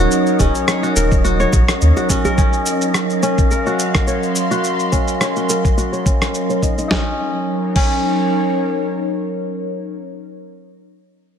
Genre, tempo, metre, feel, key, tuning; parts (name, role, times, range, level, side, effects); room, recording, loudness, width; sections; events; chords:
organic downtempo; 106 BPM; 4/4; swing 54% on 16ths; Eb dorian; A4 = 435 Hz
airy breathy pad; sustained chords; 0.0-9.9 s; Gb3 to C6; -20 LUFS; equal; chorus, sidechain pumping
kora; arpeggios; 0.0-9.5 s; Db4 to Db5; -21 LUFS; left 1 dB; low-pass filter, digital delay
warm sub bass; bass; 0.0-1.9 s; Eb1 to Eb2; -15 LUFS; equal; sidechain pumping
wind-like tuned noise texture; texture; 0.0-6.9 s; Eb5; -29 LUFS; right 2 dB; built-in reverb
dusty soul sampler-style drum kit; drums; 0.1-7.9 s; crash cymbal, rim click, shaker, snare drum; -22 LUFS; equal
electronic kick drum; drums; 0.4-7.9 s; -17 LUFS; equal
djembe; percussion; 0.4-2.4 s; -26 LUFS; right 2 dB
moderate lush hall reverb, RT60 1.9 s; -15 LUFS; side -8 dB against mid
0.0-6.9 A section; 6.9-9.2 B section
filter sweep on kora 0.0-6.9
0.0 Ebm7